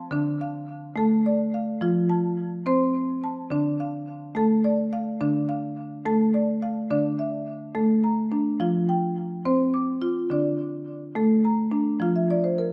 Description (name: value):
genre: world meditative, meditative tuned percussion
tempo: 71 BPM (dotted quarters)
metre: 6/8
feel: straight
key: D minor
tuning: A4 = 440 Hz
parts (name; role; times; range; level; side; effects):
- marimba with medium mallets; solo; 0.0-12.7 s; D3 to D6; -25 LUFS; equal; diffuse ambient delay
room: wet recital hall reverb, RT60 1.5 s, small room ambience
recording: none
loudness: -25 LUFS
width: mono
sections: 0.0-6.9 A section; 6.9-12.7 B section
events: marimba fill 12.0-12.7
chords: 0.1 Dm; 1.8 F; 3.5 Dm; 8.6 F5; 10.3 D5; 12.0 F5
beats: | 0.12 0.97 | 1.82 2.67 | 3.52 4.36 | 5.21 6.06 | 6.91 7.76 | 8.61 9.46 | 10.30 11.15 | 12.00